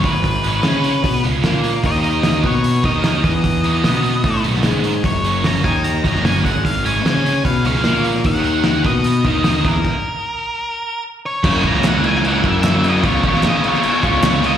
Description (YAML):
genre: indie rock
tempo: 150 BPM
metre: 4/4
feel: straight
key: unclear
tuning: A4 = 439 Hz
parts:
  - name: raw garage guitar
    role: riff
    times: 0.0-14.6 s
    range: F#2 to C#5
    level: -21 LUFS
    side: left 5 dB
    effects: overdrive, slapback echo
  - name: scooped high-gain guitar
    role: riff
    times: 0.0-14.6 s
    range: F#2 to A#4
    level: -24 LUFS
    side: right 8 dB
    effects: distortion, ensemble chorus, slapback echo
  - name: fuzz picked electric bass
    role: bass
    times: 0.0-14.6 s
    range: F#1 to C#3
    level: -19 LUFS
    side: right 1 dB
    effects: overdrive
  - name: cloth-damped thuddy drum kit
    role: drums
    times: 0.0-14.5 s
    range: crash cymbal, hi-hat, kick drum, snare drum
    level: -19 LUFS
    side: right 1 dB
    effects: none
  - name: octave-fuzz lead guitar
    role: melody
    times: 0.1-14.6 s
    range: A#4 to A#5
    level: -22 LUFS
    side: equal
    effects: distortion, slapback echo, analog delay
  - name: group handclap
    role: percussion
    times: 11.8-14.3 s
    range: none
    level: -31 LUFS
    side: right 4 dB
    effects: slapback echo
room: little or no reverb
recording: live gig heard through the venue's PA, recital hall reverb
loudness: -14 LUFS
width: side -9 dB against mid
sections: 0.0-11.4 A section; 11.4-14.6 B section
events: stop 9.9-11.4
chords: 0.2 C#7; 1.8 D#5; 3.4 B; 5.0 F#; 6.6 C#7; 8.3 D#5; 9.9 N.C.; 11.4 F#7; 13.0 C#7